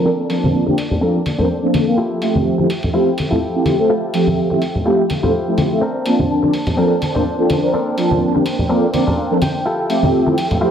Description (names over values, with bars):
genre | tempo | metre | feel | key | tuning
filtered disco house | 125 BPM | 4/4 | swing 55% on 16ths | unclear | A4 = 440 Hz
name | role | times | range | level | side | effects
mellow synth brass | accompaniment | 0.0-10.7 s | F3 to A5 | -16 LUFS | equal | chorus, phaser, low-pass filter
clear symphonic string section | sustained chords | 0.0-10.7 s | F3 to A5 | -25 LUFS | right 1 dB | low-pass filter
direct-recorded clean electric guitar | riff | 0.1-10.7 s | C4 to G5 | -25 LUFS | left 2 dB | spring reverb, low-pass filter
tambourine and congas | percussion | 0.1-10.7 s | none | -21 LUFS | left 1 dB | low-pass filter on perc
electronic hi-hat | drums | 0.3-10.6 s | none | -30 LUFS | equal | low-pass filter on hats
room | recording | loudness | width
moderate lush hall reverb, RT60 1.7 s, small room ambience | none | -14 LUFS | side -8 dB against mid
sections
0.0-10.7 A section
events
filter sweep 0.0-10.7; clean electric guitar fill 8.7-9.7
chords
0.0 Bbmaj9; 2.0 Fmaj9; 5.8 Bbmaj9; 9.7 Fmaj9